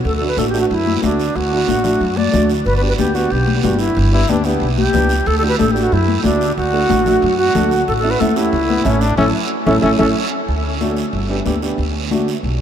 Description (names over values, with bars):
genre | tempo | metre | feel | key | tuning
latin, cumbia | 184 BPM | 4/4 | straight | D major | A4 = 440 Hz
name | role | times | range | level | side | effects
upright bass | bass | 0.0-12.6 s | G1 to F#2 | -20 LUFS | equal | none
alto flute | melody | 0.1-10.1 s | D4 to D5 | -19 LUFS | right 1 dB | none
guiro | percussion | 0.1-12.6 s | none | -29 LUFS | right 10 dB | none
dark upright piano | accompaniment | 0.2-12.3 s | A3 to A4 | -20 LUFS | right 2 dB | none
congas | percussion | 0.4-12.6 s | none | -22 LUFS | left 7 dB | none
bright trombone | second line | 4.1-4.7, 8.7-10.1 s | B3 to E4 | -26 LUFS | left 4 dB | none
room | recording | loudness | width
wet huge ambient reverb, RT60 8.4 s | in a vast, echoing space | -14 LUFS | side -9 dB against mid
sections
0.0-10.5 A section; 10.5-12.6 B section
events
band accent 9.2-10.5; drum fill 9.7-10.5; upright piano fill 10.0-10.5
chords
0.0 D; 2.7 G; 5.3 D; 7.9 A; 10.5 D; 11.1 G; 11.8 D